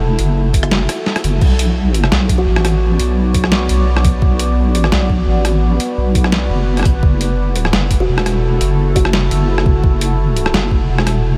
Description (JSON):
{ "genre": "half-time drum and bass", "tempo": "171 BPM", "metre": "4/4", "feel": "half-time", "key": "B minor", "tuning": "A4 = 440 Hz", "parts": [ { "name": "deep dark ambient pad", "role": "sustained chords", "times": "0.0-11.4 s", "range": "B3 to D5", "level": "-24 LUFS", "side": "equal", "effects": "chorus, built-in reverb, sidechain pumping" }, { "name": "deep soft wobble bass", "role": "bass", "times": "0.0-11.4 s", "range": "E1 to B1", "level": "-17 LUFS", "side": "equal", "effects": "chorus" }, { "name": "boom bap sampler-style drum kit", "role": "drums", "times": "0.2-11.1 s", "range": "crash cymbal, hi-hat, rim click, snare drum", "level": "-23 LUFS", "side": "equal", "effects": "small room ambience" }, { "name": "electronic kick drum", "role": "drums", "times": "0.5-10.8 s", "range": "none", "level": "-16 LUFS", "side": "equal", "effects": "small room ambience" }, { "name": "kalimba", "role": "melody", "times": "2.4-2.7, 8.0-9.5 s", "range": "F#4", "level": "-27 LUFS", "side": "equal", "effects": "diffuse ambient delay" } ], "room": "light reverb, digital ambience", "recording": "none", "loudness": "-15 LUFS", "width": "mono", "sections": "0.0-11.4 A section", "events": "kick drops out 1.1-1.4", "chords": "0.0 F#m7; 1.4 Bm; 7.0 F#m7" }